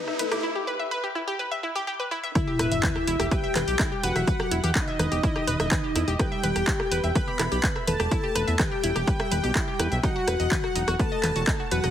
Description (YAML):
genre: melodic techno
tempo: 125 BPM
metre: 4/4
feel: straight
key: E harmonic minor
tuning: A4 = 440 Hz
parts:
  - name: soft octave-layered synth lead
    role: melody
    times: 0.0-11.9 s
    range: D#4 to B4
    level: -30 LUFS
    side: left 2 dB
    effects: chorus, phaser, sidechain pumping, digital delay
  - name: analog pluck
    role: arpeggios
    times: 0.0-11.9 s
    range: D#4 to E5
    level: -30 LUFS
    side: equal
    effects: chorus, sidechain pumping, ping-pong delay
  - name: riser and sub drop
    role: sound effects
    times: 0.0-4.3 s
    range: none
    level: -33 LUFS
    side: equal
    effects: none
  - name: techno drum kit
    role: drums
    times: 0.1-11.9 s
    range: handclaps, hi-hat, rim click, toms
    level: -29 LUFS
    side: equal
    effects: overdrive, high-pass filter on snare, high-pass filter on hats, high-pass filter on toms
  - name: fat analog bass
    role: bass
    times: 0.2-11.9 s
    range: E1 to E2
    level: -28 LUFS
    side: equal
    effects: sidechain pumping
  - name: soft supersaw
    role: second line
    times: 2.4-11.9 s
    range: D#5 to B5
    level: -32 LUFS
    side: right 1 dB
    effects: sidechain pumping, ping-pong delay
  - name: electronic kick drum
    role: drums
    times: 2.4-11.6 s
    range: none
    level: -26 LUFS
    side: equal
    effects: overdrive
room: light reverb, digital ambience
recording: heavily compressed radio sound, multiband compression, high-pass filter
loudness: -23 LUFS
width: side -10 dB against mid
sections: 0.0-2.4 A section; 2.4-11.9 B section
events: build-up 0.0-2.4; riser 0.0-0.4; break 0.4-2.4; drop 2.4-11.9; impact 2.4-4.3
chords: 0.0 Em; 10.0 B/E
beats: | 0.43 0.91 1.39 1.87 | 2.35 2.83 3.31 3.79 | 4.27 4.75 5.23 5.71 | 6.19 6.67 7.15 7.63 | 8.11 8.59 9.07 9.55 | 10.03 10.51 10.99 11.47